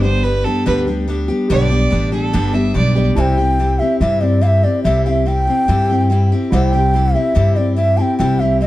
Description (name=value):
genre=honky-tonk and classic country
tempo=143 BPM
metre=4/4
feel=straight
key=C major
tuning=A4 = 440 Hz
part: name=clear fiddle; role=second line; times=0.0-3.1 s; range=A4 to E5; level=-22 LUFS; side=right 3 dB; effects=none
part: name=dark grand piano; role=accompaniment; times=0.0-8.7 s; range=E4 to D5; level=-27 LUFS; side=right 1 dB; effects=none
part: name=picked steel-string acoustic guitar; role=accompaniment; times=0.0-8.7 s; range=G2 to G4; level=-19 LUFS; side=left 2 dB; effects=none
part: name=upright bass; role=bass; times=0.0-8.7 s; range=G1 to G2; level=-16 LUFS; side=equal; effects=none
part: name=breathy bass bansuri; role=melody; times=3.2-8.7 s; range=D5 to A5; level=-18 LUFS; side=equal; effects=none
room=light reverb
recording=dark, warm production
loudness=-13 LUFS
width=side -15 dB against mid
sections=0.0-1.5 A section; 1.5-3.2 B section; 3.2-8.7 C section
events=fiddle solo 0.0-1.5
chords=0.0 G; 3.2 C